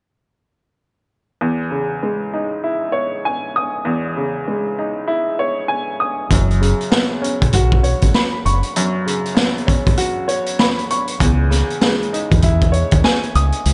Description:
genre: hip hop, boom-bap hip-hop.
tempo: 98 BPM.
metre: 4/4.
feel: swing 63% on 16ths.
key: C# minor.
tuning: A4 = 440 Hz.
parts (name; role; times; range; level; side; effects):
warm upright piano; accompaniment; 1.4-13.7 s; E2 to D#6; -22 LUFS; equal; cassette tape, high-pass filter, low-pass filter.
deep dub fingered electric bass; bass; 6.3-13.7 s; F#1 to E2; -18 LUFS; equal; none.
raw garage drum kit; drums; 6.3-13.7 s; hi-hat, kick drum, snare drum; -20 LUFS; equal; none.
room: light reverb, small room ambience.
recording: nothing above 11.0 kHz.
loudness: -18 LUFS.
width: mono.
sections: 1.4-11.2 A section; 11.2-13.7 B section.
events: break 8.8-11.2; kick muted 10.0-11.2.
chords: 1.4 C#madd9; 6.3 F#sus4; 11.2 C#madd9.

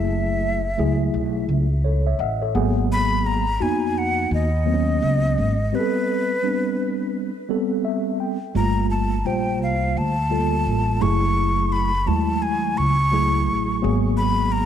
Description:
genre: hip hop, jazz-hop.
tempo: 85 BPM.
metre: 4/4.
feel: swing 63% on 16ths.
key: unclear.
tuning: A4 = 440 Hz.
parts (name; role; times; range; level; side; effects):
breathy mellow jazz flute; melody; 0.0-14.7 s; B4 to C#6; -24 LUFS; left 1 dB; tape echo.
mellow tine electric piano; accompaniment; 0.0-14.7 s; F#3 to G5; -23 LUFS; equal; medium stereo tremolo.
upright bass; bass; 0.0-14.7 s; F#1 to F2; -22 LUFS; equal; none.
room: light reverb, studio ambience.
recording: dark, warm production.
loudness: -19 LUFS.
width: side -9 dB against mid.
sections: 0.0-14.7 A section.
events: tine electric piano fill 1.8-2.9, 7.5-8.5; break 5.7-8.5.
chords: 0.0 F#m9; 2.5 Abm9; 5.7 Am9; 8.5 Gm9; 11.0 F#m9; 13.8 Abm9.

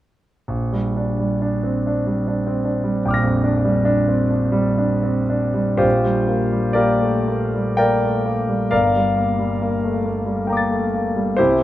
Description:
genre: classical, impressionist solo piano.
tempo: 54-76 BPM.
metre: 3/4.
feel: rubato.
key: Bb major.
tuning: A4 = 440 Hz.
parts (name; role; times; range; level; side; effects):
clear concert grand piano; solo; 0.5-11.6 s; G1 to Bb6; -17 LUFS; equal; none.
room: moderate concert hall reverb, RT60 2.1 s.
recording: close, detailed microphones.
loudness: -17 LUFS.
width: side -13 dB against mid.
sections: 0.5-5.8 A section; 5.8-11.6 B section.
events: none.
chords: 0.5 Bb6; 8.7 Gm9.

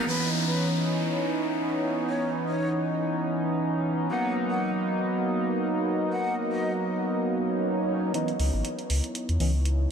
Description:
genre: deep house.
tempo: 119 BPM.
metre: 4/4.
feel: swing 55% on 16ths.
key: C# dorian.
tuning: A4 = 440 Hz.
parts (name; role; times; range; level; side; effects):
warm analog pad; sustained chords; 0.0-9.9 s; E3 to D#5; -33 LUFS; equal; chorus.
chorused polysynth; stabs; 0.0-9.5 s; E3 to D#4; -27 LUFS; right 1 dB; tape echo.
breathy jazz flute; melody; 0.1-6.7 s; B4 to F#5; -35 LUFS; left 2 dB; vintage 12-bit sampler grit, tape echo.
downlifter and swell; sound effects; 0.1-8.1 s; none; -35 LUFS; right 1 dB; none.
electronic hi-hat; drums; 8.1-9.8 s; none; -37 LUFS; right 1 dB; none.
sub bass with octave; bass; 8.4-9.9 s; G#1 to E2; -24 LUFS; equal; none.
room: wet huge ambient reverb, RT60 4.1 s.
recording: dreamy mix soaked in reverb.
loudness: -24 LUFS.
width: side -7 dB against mid.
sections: 0.1-8.1 A section; 8.1-9.9 B section.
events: swell 7.4-8.1; build-up 8.1-9.9; filter sweep on analog polysynth 8.1-9.9; filter sweep on analog synth pad 8.1-9.9.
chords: 0.1 C#m9; 4.1 Bmaj7; 8.1 C#m9.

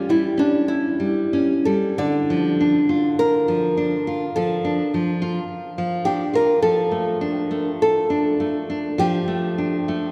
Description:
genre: romantic duo for nylon-string guitar and classical guitar.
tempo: 44-53 BPM.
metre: 4/4.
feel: rubato.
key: D minor.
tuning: A4 = 440 Hz.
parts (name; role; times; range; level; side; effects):
nylon-string guitar; melody; 0.0-10.1 s; D4 to D5; -24 LUFS; equal; none.
nylon-string guitar; accompaniment; 0.0-10.1 s; D3 to F4; -24 LUFS; equal; none.
room: wet cathedral reverb, RT60 6.2 s.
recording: recorded in a church or concert hall.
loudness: -21 LUFS.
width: mono.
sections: 0.0-10.1 A section.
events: none.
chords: 0.0 A7 (rootless); 2.0 Dm; 6.6 Dm/F.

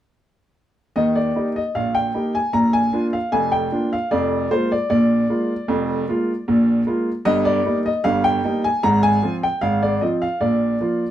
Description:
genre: ragtime piano.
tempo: 76 BPM.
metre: 2/4.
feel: straight.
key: Eb major.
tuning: A4 = 440 Hz.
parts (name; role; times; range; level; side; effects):
warm upright piano; solo; 1.0-11.1 s; F1 to Bb5; -17 LUFS; equal; none.
room: wet studio ambience, RT60 0.5 s.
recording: none.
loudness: -17 LUFS.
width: side -11 dB against mid.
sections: 1.0-11.1 A section.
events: none.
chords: 1.0 Eb; 2.5 Bb; 4.1 Bb7/F; 7.3 Eb/G; 8.8 Fm/Ab; 10.4 Bb.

